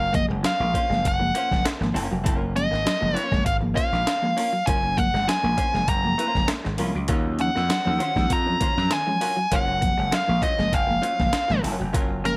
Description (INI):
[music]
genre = funk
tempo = 99 BPM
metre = 4/4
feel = straight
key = unclear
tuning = A4 = 440 Hz
[part]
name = nasal lead guitar with a parked wah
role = melody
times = 0.0-12.4 s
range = Bb4 to Bb5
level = -26 LUFS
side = equal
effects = overdrive
[part]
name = vintage hollow-body jazz guitar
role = accompaniment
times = 0.0-12.2 s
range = Gb3 to C5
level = -35 LUFS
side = equal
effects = none
[part]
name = reed electric piano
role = stabs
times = 0.0-12.4 s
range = Eb3 to Db4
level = -32 LUFS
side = equal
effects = none
[part]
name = gritty slap bass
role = bass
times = 0.0-12.3 s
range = F1 to Gb2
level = -30 LUFS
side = equal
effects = overdrive
[part]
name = semi-hollow electric guitar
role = riff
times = 0.1-12.3 s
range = Gb3 to Db4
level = -34 LUFS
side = equal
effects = none
[part]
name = breakbeat sampler-style drum kit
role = drums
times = 0.1-12.4 s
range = hi-hat, kick drum, snare drum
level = -29 LUFS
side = equal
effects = none
[sound]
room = light reverb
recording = none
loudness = -23 LUFS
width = mono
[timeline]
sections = 0.0-12.4 A section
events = none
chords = 0.0 Gbmaj7; 7.1 Ebm9; 9.5 Gbmaj7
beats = 0.45 1.05 1.66 | 2.26 2.87 3.47 4.07 | 4.68 5.28 5.89 6.49 | 7.10 7.70 8.31 8.91 | 9.52 10.12 10.73 11.33 | 11.94